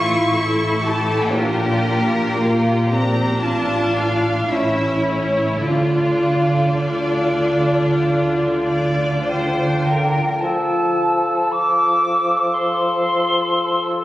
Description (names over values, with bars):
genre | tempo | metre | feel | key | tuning
classical | 47-62 BPM | 4/4 | rubato | D minor, F major from 10.4 s | A4 = 436 Hz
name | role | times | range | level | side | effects
rich studio violin section | melody | 0.0-9.3 s | Bb4 to C#6 | -25 LUFS | left 1 dB | none
clear studio violin section | second line | 0.0-10.4 s | D4 to D5 | -24 LUFS | left 1 dB | none
rich studio viola section | accompaniment | 0.0-10.2 s | Bb3 to A4 | -20 LUFS | equal | none
dark studio cello section | bass | 0.0-10.2 s | A2 to D3 | -23 LUFS | right 1 dB | none
rich studio double bass section | bass | 0.0-10.2 s | A1 to D2 | -26 LUFS | right 1 dB | none
silver concert flute | second line | 9.3-13.8 s | G5 to D6 | -19 LUFS | left 1 dB | none
mellow clarinet | second line | 10.4-14.0 s | F4 | -27 LUFS | left 4 dB | none
warm cor anglais | second line | 10.4-14.0 s | A4 | -24 LUFS | right 2 dB | none
mellow bassoon | accompaniment | 10.4-14.0 s | F3 | -22 LUFS | left 1 dB | none
room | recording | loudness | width
wet concert hall reverb, RT60 2.3 s | recorded on a phone in the room, club reverb, nothing above 11.0 kHz | -16 LUFS | side -15 dB against mid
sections
0.0-10.4 A section; 10.4-14.0 B section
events
none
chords
0.0 A; 1.3 Bb; 3.4 Dm/A; 4.5 A; 5.7 Dm; 10.4 F